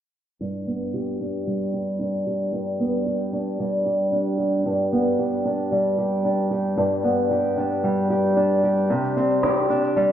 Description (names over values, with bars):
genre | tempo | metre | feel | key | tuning
folktronica | 113 BPM | 4/4 | straight | G major | A4 = 436 Hz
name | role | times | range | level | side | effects
picked old ladder-braced acoustic guitar | arpeggios | 0.4-10.1 s | G2 to G4 | -20 LUFS | equal | low-pass filter, tape echo
electronic shaker and snare drum | drums | 0.4-10.1 s | none | -25 LUFS | equal | none
room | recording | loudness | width
wet echo chamber reverb, RT60 1.8 s, digital ambience | dark, warm production, low-pass filter | -20 LUFS | side -10 dB against mid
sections
0.4-10.1 A section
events
filter sweep on steel-string acoustic guitar 0.4-10.1; filter sweep 0.4-10.1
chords
0.4 G; 8.9 Csus2